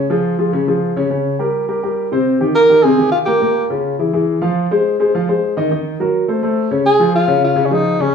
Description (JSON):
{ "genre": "jazz", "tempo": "209 BPM", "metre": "4/4", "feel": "straight", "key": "unclear", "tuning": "A4 = 441 Hz", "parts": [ { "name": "warm concert grand piano", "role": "accompaniment", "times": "0.0-8.1 s", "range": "Bb2 to F5", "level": "-15 LUFS", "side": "left 1 dB", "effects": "none" }, { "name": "breathy tenor saxophone", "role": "melody", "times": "2.6-3.7, 6.9-8.1 s", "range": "Db4 to Bb4", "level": "-13 LUFS", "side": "equal", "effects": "none" } ], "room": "wet club reverb, RT60 0.6 s", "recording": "heard from further back in the room, small room ambience", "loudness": "-13 LUFS", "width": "side -6 dB against mid", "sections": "0.0-6.9 A section; 6.9-8.1 B section", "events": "none", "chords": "0.0 Db; 1.1 Bbm69; 2.3 Abmaj9; 3.4 Gm7b5; 4.0 Fmmaj7/E; 4.6 Fm7; 5.7 Ebm; 6.3 Am; 6.9 Dbadd9" }